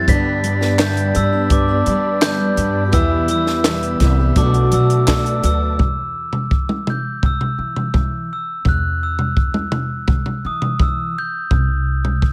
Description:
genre	indie folk with a building arrangement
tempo	84 BPM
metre	4/4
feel	straight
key	unclear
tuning	A4 = 440 Hz
part	glockenspiel with rubber mallets	melody	0.0-12.3 s	D6 to B6	-25 LUFS	equal	none
part	picked steel-string acoustic guitar	accompaniment	0.0-5.8 s	E2 to G4	-26 LUFS	equal	none
part	warm concert grand piano	accompaniment	0.0-5.8 s	G1 to E5	-29 LUFS	equal	none
part	mellow tonewheel organ	sustained chords	0.0-5.8 s	F#4 to B5	-33 LUFS	equal	slow rotary speaker
part	upright bass	bass	0.0-12.3 s	B1 to G3	-23 LUFS	equal	none
part	French horn with straight mute	second line	0.1-5.4 s	D4 to F#4	-25 LUFS	equal	none
part	compact cocktail drum kit	drums	0.1-12.3 s	hi-hat, kick drum, snare drum, toms	-21 LUFS	equal	none
part	group handclap	percussion	0.8-5.2 s	none	-26 LUFS	equal	none
room	light reverb, small room ambience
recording	none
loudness	-18 LUFS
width	mono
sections	0.0-5.8 A section; 5.8-12.3 B section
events	none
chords	0.1 G; 2.9 Em; 4.4 Bm7; 5.8 N.C.; 11.5 C5

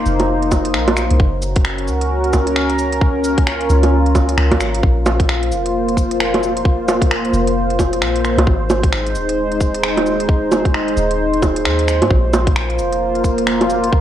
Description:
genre	future garage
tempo	132 BPM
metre	4/4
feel	swing 60% on 16ths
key	Bb minor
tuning	A4 = 440 Hz
part	dark analog pad	sustained chords	0.0-14.0 s	Ab3 to C5	-18 LUFS	equal	chorus, sidechain pumping
part	soft 808-style bass	bass	0.0-14.0 s	Eb1 to Ab2	-20 LUFS	equal	sidechain pumping
part	organic electronic drum kit	drums	0.1-13.9 s	bongos, cabasa, finger snaps, hi-hat	-20 LUFS	right 2 dB	none
part	electronic kick drum	drums	0.5-14.0 s	none	-15 LUFS	equal	none
part	wind-like tuned noise texture	texture	12.8-14.0 s	Bb3 to Bb4	-27 LUFS	left 2 dB	none
room	moderate plate reverb, RT60 1.2 s, digital ambience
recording	dreamy mix soaked in reverb, cassette tape, faint mains hum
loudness	-14 LUFS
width	side -11 dB against mid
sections	0.0-4.8 A section; 4.8-14.0 A section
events	none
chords	0.0 Bbsus2; 1.2 Gb; 4.8 Bbsus2; 8.5 Ab; 12.1 Bbsus2

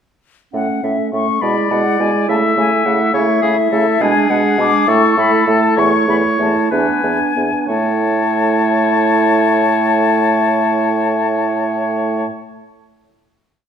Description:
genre	quick classical-period movement for wind quintet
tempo	60-70 BPM (dotted quarters)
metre	6/8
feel	straight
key	A major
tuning	A4 = 441 Hz
part	concert flute	melody	0.5-12.3 s	E5 to D6	-18 LUFS	left 7 dB	none
part	warm French horn	accompaniment	0.5-12.3 s	G#3 to B3	-21 LUFS	equal	none
part	warm clarinet	accompaniment	0.5-12.3 s	C#4 to E4	-20 LUFS	right 10 dB	none
part	warm bassoon	bass	0.5-12.3 s	E2 to C#3	-20 LUFS	right 2 dB	none
part	warm oboe	second line	1.4-12.2 s	G#4 to E5	-19 LUFS	left 3 dB	none
room	wet recital hall reverb, RT60 1.5 s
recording	none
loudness	-13 LUFS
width	side -8 dB against mid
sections	0.5-7.7 theme; 7.7-11.5 final chord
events	slowing down 3.1-7.7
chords	0.5 A; 1.4 E7/B; 2.3 A/C#; 4.0 G#dim/B; 4.9 A5; 5.8 A/E; 6.7 E7; 7.7 A

